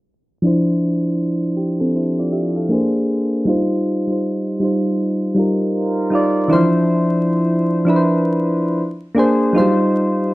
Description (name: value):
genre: hip hop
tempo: 79 BPM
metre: 4/4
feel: swing 62% on 16ths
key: unclear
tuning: A4 = 436 Hz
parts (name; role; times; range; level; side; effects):
- soft electric-piano-like synth keys; accompaniment; 0.4-10.3 s; E3 to F5; -15 LUFS; equal; chorus
room: wet studio reverb, RT60 0.6 s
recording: worn, warbling old tape, cassette tape, vinyl crackle, warbly pitch drift, low-pass filter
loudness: -15 LUFS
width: side -18 dB against mid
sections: 0.4-6.5 A section; 6.5-10.3 B section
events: filter sweep 0.4-6.5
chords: 0.4 Dm9; 2.7 Bb9; 3.5 Eb69; 6.5 Dm9; 8.8 Bb9; 9.5 Eb69